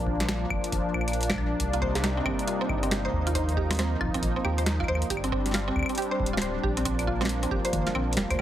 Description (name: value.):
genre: IDM.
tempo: 137 BPM.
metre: 4/4.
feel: swing 62% on 16ths.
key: unclear.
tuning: A4 = 439 Hz.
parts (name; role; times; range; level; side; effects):
warm analog pad; sustained chords; 0.0-8.4 s; C3 to Eb4; -30 LUFS; equal; chorus.
warm sub bass; bass; 0.0-8.4 s; D1 to Eb2; -30 LUFS; equal; tube saturation.
electronic kick drum; drums; 0.1-8.4 s; none; -34 LUFS; equal; overdrive.
booming analog drum machine; drums; 0.2-8.4 s; claves, hi-hat, snare drum, toms; -31 LUFS; equal; overdrive.
mallet-like synth pluck; arpeggios; 1.7-8.4 s; G3 to C5; -31 LUFS; right 2 dB; analog chorus, tape echo.
room: light reverb, digital ambience.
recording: heavily compressed radio sound.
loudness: -24 LUFS.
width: side -12 dB against mid.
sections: 0.0-8.4 A section.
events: drum fill 7.7-8.4.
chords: 0.0 Bb; 1.6 Cm7; 3.4 Ebsus2; 5.1 Gsus4; 6.9 Bb.